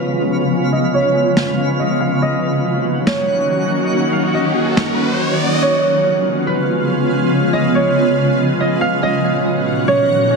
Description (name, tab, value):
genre	hip hop, atmospheric cloud-rap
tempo	141 BPM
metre	4/4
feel	half-time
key	unclear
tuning	A4 = 442 Hz
part	concert harp	melody	0.0-10.4 s	Cb5 to F5	-19 LUFS	right 2 dB	low-pass filter, tape echo
part	shimmering ambient pad	sustained chords	0.0-10.4 s	Bb2 to Gb4	-16 LUFS	equal	chorus, built-in reverb, low-pass filter
part	twinkling granular texture	texture	0.0-5.6 s	Db4 to Gb5	-26 LUFS	right 1 dB	built-in reverb
part	snare drum	drums	1.4-4.9 s	none	-19 LUFS	equal	soft clipping on snare
part	riser	sound effects	3.4-5.6 s	none	-24 LUFS	right 1 dB	none
room	moderate echo chamber reverb, RT60 1.5 s, small room ambience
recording	dense, heavily limited modern master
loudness	-14 LUFS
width	side -4 dB against mid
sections	0.0-5.6 A section; 5.6-10.4 B section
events	filter sweep 0.0-5.6; riser 3.4-5.6; drums muted 5.2-5.6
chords	0.0 Db7; 2.2 Ebm7; 5.6 Db7; 9.0 Ebm7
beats	0.09 | 0.52 0.94 1.37 1.79 | 2.22 2.64 3.07 3.49 | 3.92 4.34 4.77 5.20 | 5.62 6.05 6.47 6.90 | 7.32 7.75 8.17 8.60 | 9.03 9.45 9.88 10.30